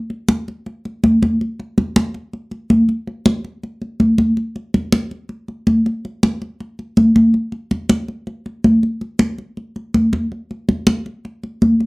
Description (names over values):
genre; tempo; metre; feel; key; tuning
jazz; 162 BPM; 4/4; straight; none; none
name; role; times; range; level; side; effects
congas; percussion; 0.1-11.9 s; none; -14 LUFS; equal; none
room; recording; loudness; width
wet studio reverb, RT60 0.5 s; home recording on cassette; -15 LUFS; side -27 dB against mid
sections
0.0-11.9 A section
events
none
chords
none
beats
0.29 0.66 1.03 | 1.40 1.78 2.15 2.52 | 2.89 3.26 3.63 4.00 | 4.38 4.75 5.12 5.49 | 5.86 6.23 6.60 6.97 | 7.35 7.72 8.09 8.46 | 8.83 9.20 9.57 9.95 | 10.32 10.69 11.06 11.43 | 11.81